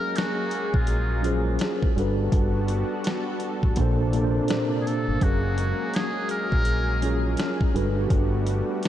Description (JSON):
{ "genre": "lo-fi hip hop", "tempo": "83 BPM", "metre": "4/4", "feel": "swing 62% on 16ths", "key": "unclear", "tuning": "A4 = 439 Hz", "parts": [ { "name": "trumpet with metal mute", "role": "melody", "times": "0.0-7.7 s", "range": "F4 to Bb4", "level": "-32 LUFS", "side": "equal", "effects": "low-pass filter, analog delay" }, { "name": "mellow tine electric piano", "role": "accompaniment", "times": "0.0-8.9 s", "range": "Bb2 to F5", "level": "-28 LUFS", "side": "equal", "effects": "medium stereo tremolo, low-pass filter" }, { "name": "lush unison pad", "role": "sustained chords", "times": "0.0-8.9 s", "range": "C3 to A4", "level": "-31 LUFS", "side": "equal", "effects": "chorus, low-pass filter" }, { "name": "dusty soul sampler-style drum kit", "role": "drums", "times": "0.2-8.9 s", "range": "hi-hat, kick drum, snare drum", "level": "-26 LUFS", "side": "equal", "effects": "none" }, { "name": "deep dub fingered electric bass", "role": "bass", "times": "0.7-8.6 s", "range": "Gb1 to Bb1", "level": "-25 LUFS", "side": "equal", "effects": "none" } ], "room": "moderate huge ambient reverb, RT60 4.7 s", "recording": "dreamy mix soaked in reverb, cassette tape", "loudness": "-22 LUFS", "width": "side -12 dB against mid", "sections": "0.0-8.9 A section", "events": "none", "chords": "0.0 Gbmaj9; 2.0 Gmaj9; 3.8 Bbmaj9; 5.2 Gbmaj9; 7.7 Gmaj9" }